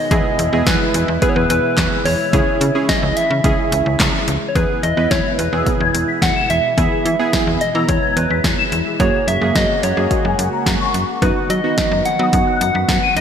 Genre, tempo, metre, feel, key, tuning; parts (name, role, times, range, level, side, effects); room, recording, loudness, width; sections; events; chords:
synth-pop; 108 BPM; 4/4; straight; A4 = 440 Hz
soft struck synth lead; melody; 0.0-13.2 s; B4 to F#5; -20 LUFS; left 1 dB; chorus, digital delay
lush unison pad; sustained chords; 0.0-13.2 s; B2 to F#4; -24 LUFS; right 1 dB; chorus
warm analog keys; accompaniment; 0.1-13.1 s; A#3 to A#5; -22 LUFS; right 4 dB; chorus
slap-like FM bass; bass; 0.1-13.2 s; C#2 to F#3; -20 LUFS; equal
punchy analog drum machine; drums; 0.1-13.2 s; handclaps, hi-hat, kick drum, snare drum; -19 LUFS; equal; gated reverb
large celesta; arpeggios; 4.6-13.2 s; D#4 to E7; -23 LUFS; left 6 dB; ensemble chorus, digital delay
moderate lush hall reverb, RT60 2.5 s; bright 1980s-style digital production; -14 LUFS; side -8 dB against mid
0.0-4.6 A section; 4.6-13.2 B section
0.1 E; 2.3 C#m; 4.6 E; 9.0 F#add9; 11.2 B/F#